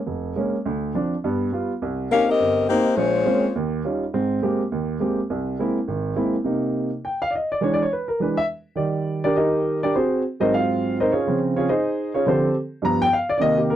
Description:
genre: jazz.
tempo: 207 BPM.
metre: 4/4.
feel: swing 60% on 8ths.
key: C minor from 6.4 s.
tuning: A4 = 440 Hz.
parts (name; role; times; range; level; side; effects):
warm baby grand piano; accompaniment; 0.1-13.8 s; F1 to A#5; -20 LUFS; right 1 dB; none.
warm saxophone section; melody; 2.1-3.6 s; Ab3 to F5; -18 LUFS; left 4 dB; none.
room: moderate booth ambience, RT60 0.2 s.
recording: dry, close 1970s-style studio recording.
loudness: -20 LUFS.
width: side -11 dB against mid.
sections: 0.0-6.4 A section; 6.4-13.8 B section.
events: grand piano solo 6.4-13.8.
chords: 0.0 Bbm7; 0.7 Dm7; 1.2 G7; 1.8 Cm7; 3.0 Bbm9; 3.6 Eb9; 4.1 Abmaj9; 5.3 Caug7; 6.4 Cm7; 7.6 E7; 8.8 Ebmaj7; 9.9 Ab9; 11.1 Dbmaj9; 12.3 Dm7; 12.8 G7#9.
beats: 0.08 0.37 | 0.66 0.95 1.24 1.53 | 1.82 2.11 2.40 2.69 | 2.98 3.26 3.55 3.84 | 4.13 4.42 4.71 5.00 | 5.29 5.58 5.87 6.16 | 6.45 6.74 7.03 7.32 | 7.61 7.90 8.19 8.48 | 8.77 9.06 9.35 9.64 | 9.93 10.22 10.51 10.80 | 11.09 11.38 11.67 11.96 | 12.25 12.54 12.83 13.12 | 13.41 13.70.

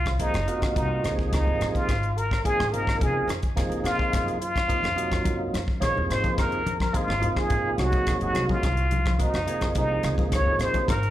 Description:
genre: electric jazz fusion.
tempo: 107 BPM.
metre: 4/4.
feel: straight.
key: unclear.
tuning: A4 = 437 Hz.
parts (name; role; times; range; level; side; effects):
trumpet with plunger mute; melody; 0.0-11.1 s; Eb4 to Db5; -27 LUFS; equal; slapback echo.
upright bass; bass; 0.0-11.1 s; Gb1 to Db3; -28 LUFS; equal; none.
tight funk drum kit; drums; 0.1-11.1 s; hi-hat, kick drum, rim click; -28 LUFS; equal; none.
percussive tonewheel organ; accompaniment; 0.2-10.9 s; C3 to Bb4; -30 LUFS; right 2 dB; slow rotary speaker, overdrive, chorus vibrato, slapback echo.
congas; percussion; 6.2-10.9 s; none; -34 LUFS; left 2 dB; slapback echo.
room: light reverb.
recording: live gig heard through the venue's PA, club reverb.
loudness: -22 LUFS.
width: side -13 dB against mid.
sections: 0.0-11.1 A section.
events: none.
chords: 0.0 Ab9; 1.0 Db69; 3.6 Gbmaj7; 5.8 Bbsus2; 7.8 Ab9; 10.0 Db69.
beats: 0.20 0.76 | 1.32 1.89 2.45 3.01 | 3.57 4.14 4.70 5.26 | 5.82 6.39 6.95 7.51 | 8.07 8.63 9.20 9.76 | 10.32 10.88.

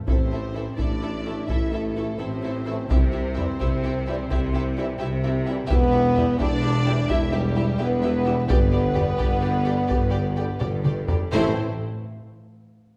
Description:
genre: cinematic, epic orchestral film score.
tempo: 85 BPM (dotted quarters).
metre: 12/8.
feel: straight.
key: A minor.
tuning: A4 = 440 Hz.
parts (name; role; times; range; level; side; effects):
dark symphonic violin section; melody; 0.1-11.6 s; G4 to E5; -39 LUFS; equal; none.
warm symphonic violin section; second line; 0.1-11.6 s; G4 to E5; -39 LUFS; equal; none.
warm symphonic viola section; accompaniment; 0.1-11.6 s; E4 to A4; -36 LUFS; equal; none.
warm French horn section; sustained chords; 0.1-11.5 s; G3 to E4; -28 LUFS; equal; none.
clear symphonic cello section; bass; 0.1-11.6 s; E2 to C3; -34 LUFS; equal; none.
warm symphonic double bass section; bass; 0.1-11.6 s; E1 to C2; -32 LUFS; equal; none.
warm tuba; bass; 0.1-11.5 s; E1 to C2; -32 LUFS; equal; none.
solo taiko drums; drums; 0.1-11.3 s; none; -27 LUFS; equal; none.
dark trombone section; sustained chords; 0.5-11.5 s; D3 to A3; -39 LUFS; equal; none.
timpani; percussion; 11.3-11.5 s; A2; -36 LUFS; equal; none.
room: wet recital hall reverb, RT60 1.5 s.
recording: recorded in a church or concert hall.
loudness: -23 LUFS.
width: mono.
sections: 0.1-11.3 A section; 11.3-13.0 B section.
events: drum fill 10.6-11.3.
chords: 0.1 Am; 2.9 C; 5.7 Em; 8.5 G; 11.3 Am.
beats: | 0.08 0.79 1.49 2.20 | 2.90 3.61 4.31 5.01 | 5.71 6.40 7.10 7.80 | 8.50 9.20 9.90 10.61 | 11.33.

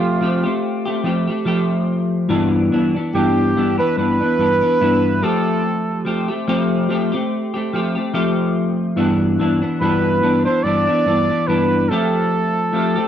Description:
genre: indie pop.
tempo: 72 BPM.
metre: 4/4.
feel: swing 55% on 16ths.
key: unclear.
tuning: A4 = 440 Hz.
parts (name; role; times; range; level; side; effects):
clear flugelhorn; melody; 0.0-13.1 s; F4 to D5; -19 LUFS; right 3 dB; analog chorus.
semi-hollow electric guitar; accompaniment; 0.0-13.1 s; G2 to G4; -17 LUFS; left 1 dB; analog chorus, warbly pitch drift.
room: moderate studio reverb, RT60 0.5 s.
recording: worn, warbling old tape, cassette tape, warbly pitch drift.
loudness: -16 LUFS.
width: side -9 dB against mid.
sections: 0.0-13.1 A section.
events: none.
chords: 0.0 Fadd9; 2.3 G6; 5.2 Fadd9; 9.0 G6; 11.9 Fadd9.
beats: 0.64 1.48 | 2.31 3.14 3.98 4.81 | 5.64 6.47 7.31 8.14 | 8.97 9.81 10.64 11.47 | 12.31.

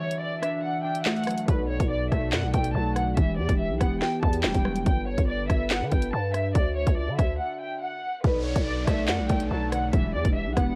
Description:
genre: hip hop, drill.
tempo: 142 BPM.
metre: 4/4.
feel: half-time.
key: B minor.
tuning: A4 = 439 Hz.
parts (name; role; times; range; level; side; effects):
warm studio violin section; melody; 0.0-10.7 s; B4 to A5; -33 LUFS; equal; low-pass filter.
glassy digital keys; accompaniment; 0.0-4.9, 8.2-10.8 s; B2 to D4; -34 LUFS; equal; chorus, low-pass filter.
dark French horn section; sustained chords; 0.0-10.8 s; D3 to E5; -38 LUFS; equal; none.
drill drum kit; drums; 0.1-10.7 s; handclaps, hi-hat, kick drum, rim click, snare drum; -27 LUFS; equal; none.
growling 808-style bass; bass; 1.5-10.8 s; E1 to D3; -31 LUFS; equal; none.
downlifter; sound effects; 8.2-10.8 s; none; -44 LUFS; equal; none.
room: digital ambience.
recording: worn, warbling old tape, cassette tape, warbly pitch drift.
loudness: -26 LUFS.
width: mono.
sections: 0.0-8.2 A section; 8.2-10.8 B section.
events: break 0.0-1.5, 7.4-8.2.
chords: 0.0 Dadd9; 1.5 Bm7; 3.2 Emadd9; 4.9 Gadd9; 6.6 Dadd9; 8.2 Bm7; 9.9 Emadd9.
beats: 0.21 0.64 1.06 | 1.48 1.91 2.33 2.75 | 3.17 3.60 4.02 4.44 | 4.86 5.29 5.71 6.13 | 6.55 6.97 7.40 7.82 | 8.24 8.66 9.09 9.51 | 9.93 10.36.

